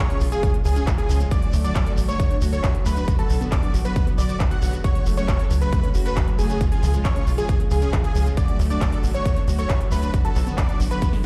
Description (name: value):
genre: uplifting trance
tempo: 136 BPM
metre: 4/4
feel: straight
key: unclear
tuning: A4 = 440 Hz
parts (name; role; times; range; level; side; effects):
- big supersaw lead; melody; 0.0-11.1 s; G#4 to F#5; -33 LUFS; equal; sidechain pumping, digital delay
- warm concert grand piano; second line; 0.0-11.1 s; G#5 to F#6; -38 LUFS; equal; sidechain pumping, digital delay
- dark chamber string section; sustained chords; 0.0-11.1 s; C#3 to F#4; -32 LUFS; equal; sidechain pumping
- unison pluck; arpeggios; 0.1-11.2 s; E#3 to B4; -36 LUFS; equal; sidechain pumping, digital delay
- big-room dance drum kit; drums; 0.1-11.2 s; handclaps, hi-hat, snare drum; -36 LUFS; equal; overdrive, studio reverb
- tight sequencer bass; bass; 0.2-10.9 s; F#1 to D2; -24 LUFS; equal; tube saturation, sidechain pumping
- shekere; percussion; 0.2-11.1 s; none; -43 LUFS; equal; none
- electronic kick drum; drums; 0.4-11.1 s; none; -24 LUFS; equal; overdrive, studio reverb
room: studio reverb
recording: played on a big sound system in a bare room, large studio reverb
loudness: -21 LUFS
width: mono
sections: 0.0-11.3 A section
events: drum fill 11.0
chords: 0.0 C#; 1.3 D; 3.1 Bm; 4.8 F#m; 6.6 C#; 8.4 D; 10.1 Bm